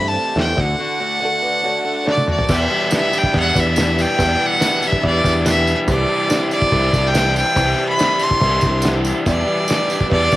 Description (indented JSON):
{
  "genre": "folk rock and heartland rock",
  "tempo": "142 BPM",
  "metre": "4/4",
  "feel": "straight",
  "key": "unclear",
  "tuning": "A4 = 440 Hz",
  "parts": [
    { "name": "clear fiddle", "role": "melody", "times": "0.0-10.4 s", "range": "D5 to C6", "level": "-18 LUFS", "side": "equal", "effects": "none" },
    { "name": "mellow reed electric piano", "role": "accompaniment", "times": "0.0-10.4 s", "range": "G4 to A5", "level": "-27 LUFS", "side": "right 3 dB", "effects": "fast tremolo, cassette tape" },
    { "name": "picked swing-style acoustic guitar", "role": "accompaniment", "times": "0.0-10.4 s", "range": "E2 to G4", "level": "-26 LUFS", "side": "left 3 dB", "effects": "cassette tape" },
    { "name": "bright tonewheel organ", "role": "sustained chords", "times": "0.0-10.4 s", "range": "E4 to F#5", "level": "-30 LUFS", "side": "equal", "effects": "none" },
    { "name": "crunchy overdriven guitar", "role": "riff", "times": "0.0-10.4 s", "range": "E2 to G4", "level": "-26 LUFS", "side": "equal", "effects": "cassette tape" },
    { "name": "picked electric bass", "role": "bass", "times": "0.0-10.4 s", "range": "C2 to G2", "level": "-20 LUFS", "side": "equal", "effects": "none" },
    { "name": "cloth-damped thuddy drum kit", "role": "drums", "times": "0.4-10.4 s", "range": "crash cymbal, hi-hat, kick drum, snare drum, toms", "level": "-20 LUFS", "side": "equal", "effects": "cassette tape" },
    { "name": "dark upright piano", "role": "second line", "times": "1.2-2.4 s", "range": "A4 to D5", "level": "-26 LUFS", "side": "right 3 dB", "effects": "cassette tape" },
    { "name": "tambourine", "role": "percussion", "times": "2.5-10.4 s", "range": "none", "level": "-32 LUFS", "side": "right 5 dB", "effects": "none" }
  ],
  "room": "light reverb",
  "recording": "home recording on cassette",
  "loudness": "-14 LUFS",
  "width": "side -16 dB against mid",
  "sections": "0.0-2.5 A section; 2.5-10.4 B section",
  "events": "drum fill 2.1-2.5",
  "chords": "0.0 C6; 0.6 D; 2.5 Em7; 5.9 Cadd9; 9.3 Em7",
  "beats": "0.36 | 0.79 1.22 1.64 2.06 | 2.49 2.91 3.34 3.76 | 4.18 4.61 5.03 5.45 | 5.88 6.30 6.72 7.15 | 7.57 8.00 8.42 8.84 | 9.27 9.69 10.12"
}